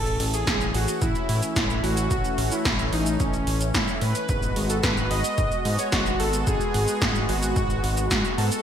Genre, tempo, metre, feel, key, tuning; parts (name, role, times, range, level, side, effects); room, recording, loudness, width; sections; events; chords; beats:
synthwave; 110 BPM; 4/4; straight; A4 = 440 Hz
soft supersaw; melody; 0.0-8.6 s; C#4 to D#5; -27 LUFS; equal; ping-pong delay
warm analog pad; sustained chords; 0.0-8.6 s; E3 to F#4; -31 LUFS; equal; chorus, sidechain pumping
fat analog bass; bass; 0.0-8.5 s; G#1 to A2; -26 LUFS; equal; tube saturation, sidechain pumping
80s electronic pad drums; drums; 0.1-8.6 s; hi-hat, shaker, snare drum; -27 LUFS; equal; gated reverb
electronic kick drum; drums; 0.5-8.2 s; -29 LUFS; equal
light reverb, digital ambience; bright 1980s-style digital production; -21 LUFS; side -9 dB against mid
0.0-8.6 A section
0.0 A; 4.3 G#m7
0.47 1.02 1.56 | 2.11 2.65 3.20 3.75 | 4.29 4.84 5.38 5.93 | 6.47 7.02 7.56 8.11